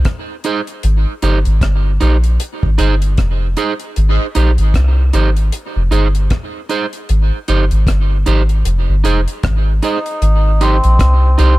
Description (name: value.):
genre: dub reggae.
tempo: 77 BPM.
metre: 4/4.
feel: swing 59% on 16ths.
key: Ab major.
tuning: A4 = 440 Hz.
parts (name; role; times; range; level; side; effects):
soft dub sub bass; bass; 0.0-11.6 s; F1 to C2; -12 LUFS; equal; none.
deep reggae drum kit; drums; 0.0-11.6 s; hi-hat, kick drum, rim click; -19 LUFS; equal; none.
electric guitar at the edge of break-up; accompaniment; 0.4-11.5 s; Eb4 to C5; -20 LUFS; right 5 dB; tape echo.
melodica; melody; 9.8-11.6 s; C4 to Eb4; -18 LUFS; equal; tape echo.
room: small room reverb.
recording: echo-heavy mix.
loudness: -12 LUFS.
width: side -18 dB against mid.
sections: 0.0-10.2 A section; 10.2-11.6 B section.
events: none.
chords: 0.0 Bb9sus4 (rootless); 0.8 Abmaj7; 2.4 Fm7; 4.0 Abmaj7; 5.5 Fm7; 7.1 Abmaj7; 8.7 Fm7; 10.2 Abmaj7.